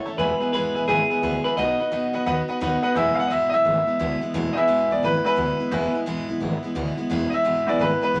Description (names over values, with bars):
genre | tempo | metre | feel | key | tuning
rockabilly | 174 BPM | 4/4 | swing 64% on 8ths | E major | A4 = 440 Hz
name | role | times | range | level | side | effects
electric guitar through a small old amp | melody | 0.0-2.6 s | G#4 to D#5 | -26 LUFS | equal | none
picked steel-string acoustic guitar | accompaniment | 0.0-8.2 s | E2 to A4 | -30 LUFS | equal | none
bright upright piano | accompaniment | 0.1-8.2 s | G#3 to A5 | -24 LUFS | equal | none
upright bass | bass | 0.1-8.2 s | E1 to F#2 | -32 LUFS | equal | none
room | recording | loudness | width
moderate studio reverb, RT60 0.6 s | none | -23 LUFS | mono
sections
0.0-3.0 A section; 3.0-8.2 B section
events
upright piano solo 3.0-8.2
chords
0.2 E; 1.6 B; 3.0 E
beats
| 0.18 0.53 0.88 1.22 | 1.57 1.92 2.26 2.61 | 2.95 3.30 3.65 3.99 | 4.34 4.68 5.03 5.38 | 5.72 6.07 6.41 6.76 | 7.10 7.45 7.79 8.14